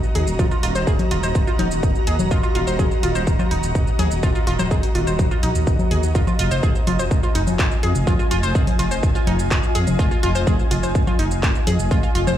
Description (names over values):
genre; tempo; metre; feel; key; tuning
melodic techno; 125 BPM; 4/4; straight; F phrygian; A4 = 445 Hz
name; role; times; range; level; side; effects
techno drum kit; drums; 0.0-12.4 s; congas, handclaps, hi-hat, shaker; -26 LUFS; left 3 dB; overdrive
ethereal airy pad; texture; 0.0-12.4 s; F4 to Bb5; -26 LUFS; equal; ensemble chorus, built-in reverb, sidechain pumping
analog pluck; arpeggios; 0.2-12.4 s; Eb4 to C5; -26 LUFS; right 1 dB; chorus, sidechain pumping, tape echo
swelling detuned saw bass; bass; 0.2-12.4 s; Eb1 to F2; -22 LUFS; equal; sidechain pumping
electronic kick drum; drums; 0.4-12.0 s; none; -20 LUFS; equal; distortion, overdrive
room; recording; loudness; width
light reverb, digital ambience; played on a big sound system in a bare room, large studio reverb; -17 LUFS; side -11 dB against mid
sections
0.0-12.4 A section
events
none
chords
0.0 Ebm; 6.2 Fm7